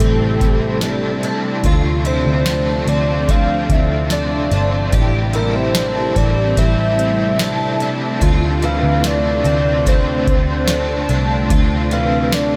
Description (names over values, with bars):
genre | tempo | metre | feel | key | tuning
dream pop | 73 BPM | 4/4 | straight | D minor | A4 = 436 Hz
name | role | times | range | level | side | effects
soft octave-layered synth lead | melody | 0.0-12.6 s | A4 to F5 | -24 LUFS | equal | chorus, tape echo
cranked stack guitar | accompaniment | 0.0-12.6 s | A2 to A4 | -29 LUFS | equal | overdrive, tremolo, ensemble chorus
string machine, violins | sustained chords | 0.0-12.6 s | C3 to E4 | -24 LUFS | equal | ensemble chorus
picked twelve-string acoustic guitar | arpeggios | 0.0-12.6 s | E3 to G4 | -26 LUFS | equal | ensemble chorus, tape echo
vintage muted picked electric bass | bass | 0.0-12.6 s | G1 to D2 | -22 LUFS | equal | none
booming analog drum machine | drums | 0.0-12.5 s | hi-hat, kick drum, snare drum | -22 LUFS | equal | none
room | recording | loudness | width
wet huge ambient reverb, RT60 8.3 s | dreamy mix soaked in reverb | -17 LUFS | mono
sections
0.0-12.6 A section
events
none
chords
0.0 Am7; 1.6 Dm7; 4.9 Am7; 8.2 Dm7